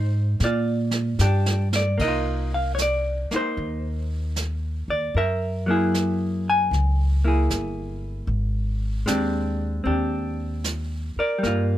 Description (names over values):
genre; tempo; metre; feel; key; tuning
jazz ballad; 76 BPM; 4/4; swing 66% on 8ths; C minor; A4 = 440 Hz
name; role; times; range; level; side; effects
vintage hollow-body jazz guitar; accompaniment; 0.0-11.8 s; F#3 to G#5; -24 LUFS; equal; none
upright bass; bass; 0.0-11.8 s; G1 to Bb2; -24 LUFS; equal; none
jazz brush drum kit; drums; 0.4-11.8 s; brushed snare drum, hi-hat, kick drum, ride cymbal, snare drum; -31 LUFS; right 3 dB; none
room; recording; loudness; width
little or no reverb; close, detailed microphones, faint mains hum; -21 LUFS; side -13 dB against mid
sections
0.0-2.0 A section; 2.0-11.8 B section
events
drum fill 1.2-2.0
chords
0.4 Bb6; 2.0 Cm7; 5.2 F#9; 8.3 Abmaj7#11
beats
0.40 1.20 | 1.99 2.78 3.57 4.36 | 5.15 5.94 6.73 7.51 | 8.29 9.07 9.86 10.64 | 11.43